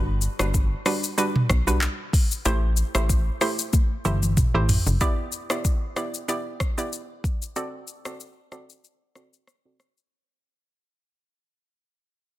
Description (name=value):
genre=afrobeats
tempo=94 BPM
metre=4/4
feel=swing 55% on 16ths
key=E minor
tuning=A4 = 443 Hz
part: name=hollow square pluck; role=accompaniment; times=0.0-9.9 s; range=G3 to D5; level=-28 LUFS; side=right 2 dB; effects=chorus, low-pass filter
part: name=plucky analog bass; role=bass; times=0.0-5.0 s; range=F#1 to B1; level=-23 LUFS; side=equal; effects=none
part: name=afro-pop drum kit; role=drums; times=0.2-10.1 s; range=handclaps, hi-hat, kick drum, rim click, shaker, toms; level=-23 LUFS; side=equal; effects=soft clipping on snare
room=digital ambience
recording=dense, heavily limited modern master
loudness=-21 LUFS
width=side -16 dB against mid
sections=0.0-5.0 A section; 5.0-10.1 B section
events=drum fill 3.7-5.0; fade-out 5.0-10.1; filter sweep on synth pluck 5.0-10.1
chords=0.0 Gmaj7; 2.5 Am7; 5.0 Em7; 7.6 D7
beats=0.54 1.18 1.82 | 2.46 3.09 3.73 4.37 | 5.01 5.65 6.29 6.92 | 7.56 8.20 8.84 9.48